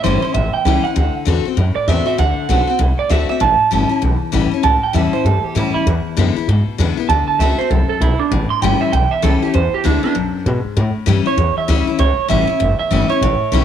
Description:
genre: rockabilly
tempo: 196 BPM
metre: 4/4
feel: swing 62% on 8ths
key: A mixolydian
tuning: A4 = 436 Hz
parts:
  - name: electric guitar through a small old amp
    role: melody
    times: 0.0-13.6 s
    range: D4 to C6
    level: -18 LUFS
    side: right 8 dB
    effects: spring reverb, tape echo
  - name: picked steel-string acoustic guitar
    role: accompaniment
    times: 0.0-13.6 s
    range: E2 to F#4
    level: -20 LUFS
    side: left 10 dB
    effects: none
  - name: upright bass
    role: bass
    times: 0.0-13.6 s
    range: F#1 to B2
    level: -16 LUFS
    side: equal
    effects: none
room: light reverb, small room ambience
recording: 1960s-style stereo with parts hard left and right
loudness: -14 LUFS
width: side -9 dB against mid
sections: 0.0-10.8 A section; 10.8-13.6 A section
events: none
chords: 0.0 A7; 1.0 D7; 3.4 A7; 5.9 E7; 7.1 D7; 8.3 A7; 9.5 E7; 10.8 A7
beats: 0.04 0.35 0.65 | 0.96 1.26 1.57 1.88 | 2.18 2.49 2.80 3.10 | 3.41 3.72 4.02 4.33 | 4.64 4.95 5.25 5.56 | 5.87 6.17 6.48 6.79 | 7.09 7.40 7.71 8.01 | 8.32 8.63 8.93 9.24 | 9.55 9.85 10.16 10.46 | 10.77 11.08 11.38 11.69 | 11.99 12.30 12.61 12.91 | 13.22 13.52

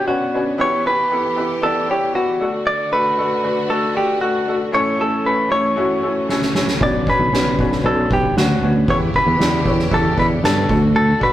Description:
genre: piano-driven pop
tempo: 116 BPM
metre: 4/4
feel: straight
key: D major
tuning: A4 = 442 Hz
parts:
  - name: direct-recorded clean electric guitar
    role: melody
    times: 0.0-11.3 s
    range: F#4 to D5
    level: -19 LUFS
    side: equal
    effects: none
  - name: bright upright piano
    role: accompaniment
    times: 0.0-11.3 s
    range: A2 to D5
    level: -22 LUFS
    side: left 1 dB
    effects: none
  - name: clear studio string section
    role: sustained chords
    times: 0.0-11.3 s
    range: D3 to G4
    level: -29 LUFS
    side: equal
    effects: none
  - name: soft-mallet drum kit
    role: drums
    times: 6.3-11.3 s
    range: kick drum, snare drum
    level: -21 LUFS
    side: equal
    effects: none
  - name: sustaining fretless electric bass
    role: bass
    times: 6.8-11.1 s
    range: B1 to G2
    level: -18 LUFS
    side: right 1 dB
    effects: none
room: moderate stone room reverb, RT60 1.1 s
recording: rough rehearsal-room recording, tube saturation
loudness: -15 LUFS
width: side -13 dB against mid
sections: 0.0-11.3 A section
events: drum fill 6.3-6.8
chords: 0.0 Bmadd9; 0.6 Em; 2.4 D; 4.7 A; 6.8 Bmadd9; 8.9 Em; 10.7 D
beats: 0.07 | 0.59 1.11 1.63 2.15 | 2.66 3.18 3.70 4.22 | 4.74 5.25 5.77 6.29 | 6.81 7.33 7.84 8.36 | 8.88 9.40 9.92 10.44 | 10.96

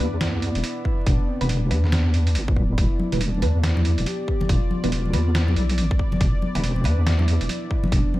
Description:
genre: deep dubstep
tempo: 140 BPM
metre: 4/4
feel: swing 61% on 16ths, half-time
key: E phrygian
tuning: A4 = 440 Hz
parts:
  - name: breathy flute-like synth lead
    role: melody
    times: 0.0-8.2 s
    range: C4 to G4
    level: -33 LUFS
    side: equal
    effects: lush chorus, dub echo
  - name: dark analog pad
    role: sustained chords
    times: 0.0-8.2 s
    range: B3 to D5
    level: -32 LUFS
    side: equal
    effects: chorus
  - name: filtered dub chord stab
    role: stabs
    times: 0.0-7.0 s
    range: E3 to B4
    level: -33 LUFS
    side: right 2 dB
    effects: phaser, wide subtle chorus, dub echo
  - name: deep soft wobble bass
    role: bass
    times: 0.0-8.0 s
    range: D1 to E2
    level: -20 LUFS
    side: equal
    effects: chorus
  - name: trip hop sampler-style drum kit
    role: drums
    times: 0.2-8.0 s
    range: hi-hat, snare drum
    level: -29 LUFS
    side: right 1 dB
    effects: studio reverb
  - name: electronic kick drum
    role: drums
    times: 0.9-8.0 s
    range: none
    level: -21 LUFS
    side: equal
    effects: studio reverb
  - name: congas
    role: percussion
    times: 3.0-8.2 s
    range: none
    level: -29 LUFS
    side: left 1 dB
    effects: none
room: little or no reverb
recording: vinyl crackle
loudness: -19 LUFS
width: side -17 dB against mid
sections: 0.0-8.2 A section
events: none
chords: 0.0 E5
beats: 0.21 0.64 | 1.07 1.49 1.92 2.35 | 2.78 3.21 3.64 4.07 | 4.49 4.92 5.35 5.78 | 6.21 6.64 7.07 7.49 | 7.92

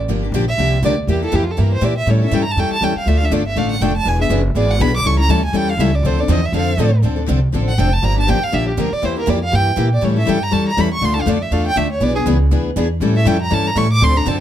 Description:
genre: acoustic string swing (jazz manouche)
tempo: 242 BPM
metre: 4/4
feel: swing 56% on 8ths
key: D minor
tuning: A4 = 440 Hz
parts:
  - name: upright bass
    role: bass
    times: 0.0-14.4 s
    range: E1 to Bb2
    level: -17 LUFS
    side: equal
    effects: none
  - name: picked steel-string acoustic guitar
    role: accompaniment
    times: 0.1-14.4 s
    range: D3 to A4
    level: -20 LUFS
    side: left 6 dB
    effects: none
  - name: picked steel-string acoustic guitar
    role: accompaniment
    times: 0.1-14.4 s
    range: D3 to B4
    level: -25 LUFS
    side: right 8 dB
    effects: none
  - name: warm violin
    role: melody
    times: 0.5-14.4 s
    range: F4 to D6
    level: -20 LUFS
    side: right 2 dB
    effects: plate reverb
room: light reverb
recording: close, detailed microphones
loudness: -14 LUFS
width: side -11 dB against mid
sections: 0.0-7.0 A section; 7.0-14.4 A section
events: violin solo 0.0-14.4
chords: 0.1 Gm7; 1.1 Edim; 2.1 A7; 3.1 Dm; 4.1 E7; 5.1 A7; 6.0 Dm7; 8.0 Gm7; 9.0 Edim; 10.0 A7; 11.0 Dm; 12.0 E7; 13.0 A7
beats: | 0.09 0.34 0.59 0.83 | 1.08 1.33 1.58 1.83 | 2.08 2.33 2.57 2.82 | 3.07 3.32 3.57 3.81 | 4.06 4.31 4.56 4.81 | 5.06 5.30 5.55 5.80 | 6.05 6.30 6.55 6.79 | 7.04 7.29 7.54 7.79 | 8.04 8.29 8.53 8.78 | 9.03 9.28 9.53 9.78 | 10.03 10.27 10.52 10.77 | 11.02 11.27 11.52 11.77 | 12.01 12.26 12.51 12.76 | 13.01 13.26 13.51 13.75 | 14.00 14.25

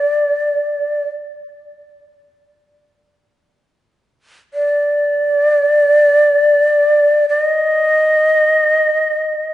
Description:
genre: japanese traditional, Japanese chamber music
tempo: free time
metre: none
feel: none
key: unclear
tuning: A4 = 441 Hz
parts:
  - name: breathy shakuhachi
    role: solo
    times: 0.0-9.5 s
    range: D5 to Eb5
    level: -12 LUFS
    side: equal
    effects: none
room: moderate church reverb, RT60 2.8 s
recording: nothing above 11.0 kHz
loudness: -12 LUFS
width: side -14 dB against mid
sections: 0.0-3.6 A section; 3.6-9.5 A section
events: none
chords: none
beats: free time

